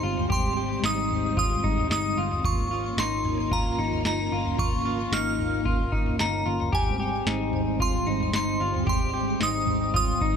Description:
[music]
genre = dream pop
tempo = 112 BPM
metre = 4/4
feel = straight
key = Ab major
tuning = A4 = 441 Hz
[part]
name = glassy synth bell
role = melody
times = 0.0-10.4 s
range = Ab5 to F6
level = -29 LUFS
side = right 2 dB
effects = chorus, ping-pong delay
[part]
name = string machine, full ensemble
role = sustained chords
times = 0.0-10.4 s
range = G3 to F4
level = -30 LUFS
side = equal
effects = ensemble chorus
[part]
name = electric guitar at the edge of break-up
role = arpeggios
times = 0.0-10.4 s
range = Eb4 to G4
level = -30 LUFS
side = left 4 dB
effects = lush chorus, ping-pong delay
[part]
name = vintage muted picked electric bass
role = bass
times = 0.0-10.4 s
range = G1 to Ab1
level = -31 LUFS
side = equal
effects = none
[part]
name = booming analog drum machine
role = drums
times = 0.2-10.4 s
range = kick drum, snare drum, toms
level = -29 LUFS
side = right 1 dB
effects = none
[sound]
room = light reverb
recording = none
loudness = -23 LUFS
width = side -7 dB against mid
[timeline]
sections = 0.0-10.4 A section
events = none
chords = 0.0 Abmaj7; 2.4 Db6; 6.7 Abmaj7

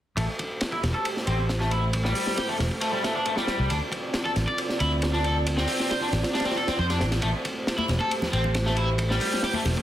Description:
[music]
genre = breakbeat, breaks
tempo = 136 BPM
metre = 4/4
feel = straight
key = A minor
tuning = A4 = 440 Hz
[part]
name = dark analog pad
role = sustained chords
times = 0.2-9.8 s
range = A3 to D5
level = -32 LUFS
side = right 2 dB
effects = chorus, sidechain pumping
[part]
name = overdriven semi-hollow guitar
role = riff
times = 0.2-9.6 s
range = G3 to D5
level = -28 LUFS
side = left 1 dB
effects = low-pass filter, digital delay
[part]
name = fingered electric bass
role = bass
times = 0.2-9.7 s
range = E1 to F2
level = -26 LUFS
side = equal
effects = low-pass filter
[part]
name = crunchy breakbeat drum kit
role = drums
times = 0.2-9.8 s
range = hi-hat, kick drum, ride cymbal, snare drum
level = -29 LUFS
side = equal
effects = high-pass filter on kick, high-pass filter on cymbals, high-pass filter on hats, high-pass filter on snare, high-pass filter on room
[part]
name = congas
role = percussion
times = 7.8-9.8 s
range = none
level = -33 LUFS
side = left 3 dB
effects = none
[sound]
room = light reverb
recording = dense, heavily limited modern master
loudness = -23 LUFS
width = side -12 dB against mid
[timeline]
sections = 0.2-9.8 A section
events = filter sweep on fingered electric bass 0.2-9.8; filter sweep on overdriven electric guitar 0.2-9.8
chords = 0.2 Am7; 3.7 Dm7; 7.2 Am7

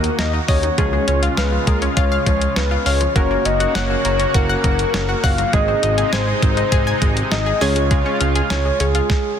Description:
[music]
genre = synth-pop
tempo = 101 BPM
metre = 4/4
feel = straight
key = unclear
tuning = A4 = 440 Hz
[part]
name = soft octave-layered synth lead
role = melody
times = 0.0-9.4 s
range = Ab4 to F5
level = -21 LUFS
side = left 2 dB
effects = chorus, digital delay
[part]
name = warm analog keys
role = accompaniment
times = 0.0-9.1 s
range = Ab3 to Bb4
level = -27 LUFS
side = right 2 dB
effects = chorus
[part]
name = lush unison pad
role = sustained chords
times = 0.0-9.1 s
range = C3 to Gb4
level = -24 LUFS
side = right 1 dB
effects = chorus
[part]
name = smooth synth bass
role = bass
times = 0.0-9.0 s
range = Gb1 to Eb2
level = -21 LUFS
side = equal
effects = none
[part]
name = clean 12-bit digital drum machine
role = drums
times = 0.0-9.2 s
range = hi-hat, kick drum, snare drum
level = -21 LUFS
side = equal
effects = none
[part]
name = analog pluck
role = arpeggios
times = 0.2-9.0 s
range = Eb3 to Ab5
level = -25 LUFS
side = left 3 dB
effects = chorus, digital delay
[sound]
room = light reverb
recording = dense, heavily limited modern master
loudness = -15 LUFS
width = side -8 dB against mid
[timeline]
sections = 0.0-9.4 A section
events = stop 9.1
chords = 0.0 Ebm; 0.8 Db; 3.2 Gb; 5.5 Ab; 7.6 Db

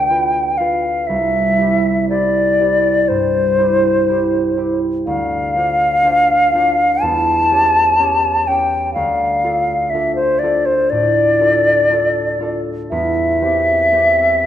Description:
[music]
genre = classical, romantic duo for flute and harp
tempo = 61 BPM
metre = 4/4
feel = rubato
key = C major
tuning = A4 = 440 Hz
[part]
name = hollow concert flute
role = melody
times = 0.0-14.5 s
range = C5 to A5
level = -14 LUFS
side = left 1 dB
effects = none
[part]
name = concert harp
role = accompaniment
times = 0.0-14.5 s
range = C2 to C#5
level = -20 LUFS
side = right 2 dB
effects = none
[sound]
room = moderate recital hall reverb, RT60 1.7 s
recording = none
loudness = -13 LUFS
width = side -10 dB against mid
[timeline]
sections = 0.0-14.5 A section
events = none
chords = 0.0 Bdim/D; 1.1 C; 5.1 Dm7; 7.0 C#dim/E; 8.9 Dm; 12.9 C/E

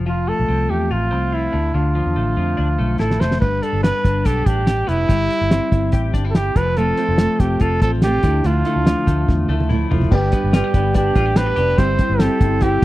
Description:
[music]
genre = jangly indie pop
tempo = 143 BPM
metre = 4/4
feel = straight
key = unclear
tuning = A4 = 439 Hz
[part]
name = twelve-string electric guitar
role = arpeggios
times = 0.0-12.8 s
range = G2 to G4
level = -24 LUFS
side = left 4 dB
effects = slapback echo
[part]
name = vintage muted fingered electric bass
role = bass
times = 0.0-12.8 s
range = F1 to F2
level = -20 LUFS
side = equal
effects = none
[part]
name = mellow trumpet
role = melody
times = 0.1-12.8 s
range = E4 to C5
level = -21 LUFS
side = right 2 dB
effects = tube saturation, slapback echo
[part]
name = cloth-damped thuddy drum kit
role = drums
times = 3.0-12.8 s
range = crash cymbal, hi-hat, kick drum, snare drum, toms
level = -17 LUFS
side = equal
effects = none
[part]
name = fingerpicked steel-string acoustic guitar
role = accompaniment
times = 6.8-12.8 s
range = F2 to G4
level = -24 LUFS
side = right 3 dB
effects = none
[part]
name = warm upright piano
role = accompaniment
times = 10.1-12.8 s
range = B3 to G4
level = -26 LUFS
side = left 6 dB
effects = none
[sound]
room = little or no reverb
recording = dry, close 1970s-style studio recording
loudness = -15 LUFS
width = side -16 dB against mid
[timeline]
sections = 0.0-3.4 A section; 3.4-10.1 B section; 10.1-12.8 C section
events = drum fill 3.0-3.4, 9.3-10.1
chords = 0.0 F; 1.5 Dmadd9; 3.4 G; 5.1 C/G; 6.6 F; 8.2 Dmadd9; 10.1 G; 11.8 C/G

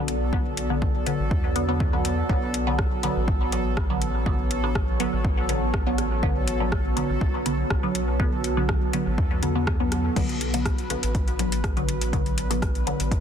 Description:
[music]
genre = dub techno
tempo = 122 BPM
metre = 4/4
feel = straight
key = B minor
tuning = A4 = 436 Hz
[part]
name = deep dark ambient pad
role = sustained chords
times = 0.0-13.2 s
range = B3 to D5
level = -31 LUFS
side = right 1 dB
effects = chorus, built-in reverb, sidechain pumping
[part]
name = filtered dub chord stab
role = stabs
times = 0.0-13.1 s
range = D3 to B3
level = -28 LUFS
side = left 1 dB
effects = phaser, cassette tape, sidechain pumping, dub echo
[part]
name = soft dub sub bass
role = bass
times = 0.0-13.2 s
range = A1 to E2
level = -28 LUFS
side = equal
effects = sidechain pumping
[part]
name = bubbling stepped-filter texture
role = texture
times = 0.0-13.2 s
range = A4 to B4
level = -35 LUFS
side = equal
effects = chorus, built-in reverb, sidechain pumping
[part]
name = deep house drum kit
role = drums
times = 0.1-13.2 s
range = crash cymbal, hi-hat, rim click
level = -32 LUFS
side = left 1 dB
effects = overdrive, small room reverb, dub echo
[part]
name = electronic kick drum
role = drums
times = 0.3-13.2 s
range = none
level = -26 LUFS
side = equal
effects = overdrive, small room reverb
[sound]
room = light reverb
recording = dense, heavily limited modern master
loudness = -22 LUFS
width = side -8 dB against mid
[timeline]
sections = 0.0-13.2 A section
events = filter sweep on synth stab 0.0-13.2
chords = 0.0 Bm

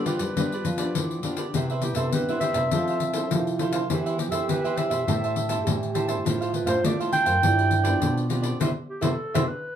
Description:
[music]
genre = samba and choro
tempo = 102 BPM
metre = 4/4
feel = straight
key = C major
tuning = A4 = 439 Hz
[part]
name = breathy clarinet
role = melody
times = 0.0-9.8 s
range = G4 to G5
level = -27 LUFS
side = right 1 dB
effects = none
[part]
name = cavaquinho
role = accompaniment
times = 0.0-9.4 s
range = D4 to A5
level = -32 LUFS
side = right 4 dB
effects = none
[part]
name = nylon-string guitar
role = accompaniment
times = 0.0-9.4 s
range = G2 to A4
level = -33 LUFS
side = left 3 dB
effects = none
[part]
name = nylon-string guitar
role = bass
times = 0.0-9.5 s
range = F#2 to C4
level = -28 LUFS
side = equal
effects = none
[part]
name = pandeiro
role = percussion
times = 0.1-9.5 s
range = none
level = -29 LUFS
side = left 5 dB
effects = none
[part]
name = breathy trombone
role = second line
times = 1.5-9.4 s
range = B3 to A4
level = -30 LUFS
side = right 6 dB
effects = none
[sound]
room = wet studio ambience, RT60 0.5 s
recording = heard from further back in the room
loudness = -22 LUFS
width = side -9 dB against mid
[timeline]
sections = 0.0-9.8 A section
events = band accent 8.6-9.8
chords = 0.0 G7; 1.5 Cmaj7; 2.7 Fmaj7; 3.9 Cmaj7/E; 5.1 Am7; 6.3 Dm9/A; 7.4 G7; 8.6 Cmaj7

